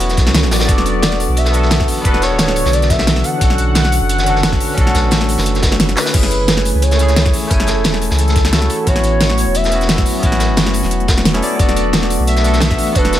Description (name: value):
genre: liquid drum and bass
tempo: 176 BPM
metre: 4/4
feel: swing 53% on 16ths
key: F# minor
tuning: A4 = 440 Hz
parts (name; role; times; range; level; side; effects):
- barky tine electric piano; accompaniment; 0.0-13.2 s; A3 to G#5; -20 LUFS; equal; vintage 12-bit sampler grit, tape echo
- ethereal airy pad; sustained chords; 0.0-13.2 s; D3 to G#5; -23 LUFS; left 1 dB; ensemble chorus, built-in reverb, sidechain pumping
- warm sub bass; bass; 0.0-13.2 s; D1 to C#2; -17 LUFS; equal; none
- crunchy breakbeat drum kit; drums; 0.0-13.2 s; hi-hat, snare drum; -22 LUFS; equal; high-pass filter on hats, studio reverb, high-pass filter on snare, high-pass filter on room
- pop drum kit; drums; 0.0-13.2 s; crash cymbal, handclaps, hi-hat, snare drum; -18 LUFS; equal; studio reverb
- electronic kick drum; drums; 0.2-13.0 s; none; -16 LUFS; equal; studio reverb
- warm velvety synth lead; melody; 0.5-13.2 s; A4 to F#5; -20 LUFS; equal; chorus, dub echo
room: light reverb, digital ambience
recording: none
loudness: -12 LUFS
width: side -12 dB against mid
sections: 0.0-6.1 A section; 6.1-13.2 A section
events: drop 0.0-6.1, 6.1-13.2; drum fill 6.0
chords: 0.0 A6; 0.7 E7sus4; 3.4 Bm7; 6.1 F#m9; 8.9 A6; 11.6 E7sus4